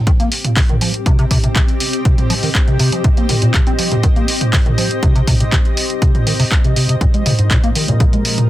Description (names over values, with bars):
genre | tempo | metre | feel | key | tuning
acid house | 121 BPM | 4/4 | straight | C minor | A4 = 440 Hz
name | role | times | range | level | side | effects
granular cloud pad | texture | 0.0-8.5 s | C4 to F5 | -23 LUFS | left 1 dB | built-in reverb, sidechain pumping
acid bass, square | riff | 0.1-8.2 s | Ab2 to C4 | -18 LUFS | equal | overdrive, wide subtle chorus, cassette tape, digital delay
electronic kick drum | drums | 0.1-8.1 s | none | -14 LUFS | equal | none
punchy analog drum machine | drums | 0.1-8.5 s | handclaps, hi-hat, toms | -18 LUFS | right 1 dB | none
lush unison pad | sustained chords | 7.7-8.5 s | Bb2 to Bb4 | -22 LUFS | left 1 dB | chorus, sidechain pumping
room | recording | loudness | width
light reverb | dense, heavily limited modern master | -12 LUFS | side -14 dB against mid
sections
0.0-8.5 A section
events
filter sweep on acid bass 0.0-8.5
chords
0.0 Cm; 7.0 Bbm7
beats
0.07 0.56 | 1.06 1.56 2.05 2.55 | 3.04 3.54 4.04 4.53 | 5.03 5.52 6.02 6.51 | 7.01 7.51 8.00